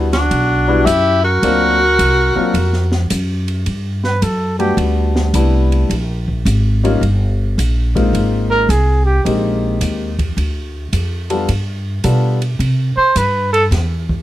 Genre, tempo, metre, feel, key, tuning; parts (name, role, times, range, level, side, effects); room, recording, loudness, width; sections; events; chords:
jazz, small-group swing and bop; 107 BPM; 4/4; swing 67% on 8ths; A4 = 440 Hz
warm grand piano; accompaniment; 0.0-12.4 s; F#3 to A4; -18 LUFS; left 3 dB
upright bass; bass; 0.0-14.2 s; G1 to C3; -16 LUFS; equal
clear tenor saxophone; melody; 0.1-3.1 s; D4 to F#4; -15 LUFS; left 1 dB
mellow trumpet; second line; 0.1-4.8, 8.5-9.2, 13.0-13.6 s; F#4 to C5; -17 LUFS; right 2 dB
open jazz drum kit; drums; 0.1-14.2 s; hi-hat, kick drum, ride cymbal, snare drum; -26 LUFS; right 1 dB
little or no reverb; close, detailed microphones; -13 LUFS; side -14 dB against mid
0.0-3.7 A section; 3.7-14.2 B section
trumpet solo 3.7-14.2
0.0 Em9; 1.4 D7alt; 3.7 Gmaj9; 5.9 Bbm7; 7.0 Ebadd9; 8.1 Abmaj9; 10.4 Dm; 11.5 G9; 12.6 C